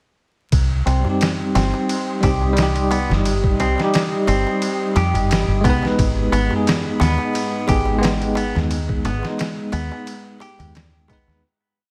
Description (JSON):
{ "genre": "trip hop", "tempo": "88 BPM", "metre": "4/4", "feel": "swing 54% on 16ths", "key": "C harmonic minor", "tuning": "A4 = 439 Hz", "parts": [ { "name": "deep dark ambient pad", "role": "sustained chords", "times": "1.4-11.4 s", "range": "Ab3 to Eb6", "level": "-31 LUFS", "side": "equal", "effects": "chorus, built-in reverb" }, { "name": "deep dub fingered electric bass", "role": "bass", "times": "0.5-11.4 s", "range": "G1 to F2", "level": "-23 LUFS", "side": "equal", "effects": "none" }, { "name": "trip hop sampler-style drum kit", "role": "drums", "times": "0.5-11.4 s", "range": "kick drum, ride cymbal, snare drum", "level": "-26 LUFS", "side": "equal", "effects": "overdrive, small room ambience" }, { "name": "darbuka", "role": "percussion", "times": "0.5-11.4 s", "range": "none", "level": "-32 LUFS", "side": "equal", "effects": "none" }, { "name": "semi-hollow electric guitar", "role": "arpeggios", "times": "0.9-11.4 s", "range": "B3 to G4", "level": "-28 LUFS", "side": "equal", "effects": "low-pass filter, digital delay" }, { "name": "bell-like tine electric piano", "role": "accompaniment", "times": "1.0-11.4 s", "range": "G3 to B4", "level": "-24 LUFS", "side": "equal", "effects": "tremolo, vintage 12-bit sampler grit, tape echo" } ], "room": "light reverb", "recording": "vinyl crackle", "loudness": "-19 LUFS", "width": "mono", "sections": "0.5-11.4 groove", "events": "filter sweep on clean electric guitar 0.5-11.4; fade-out 7.8-11.4", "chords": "0.5 Cm; 6.0 Abm", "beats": "| 0.53 1.21 1.89 2.57 | 3.25 3.94 4.62 5.30 | 5.98 6.66 7.34 8.03 | 8.71 9.39 10.07 10.75" }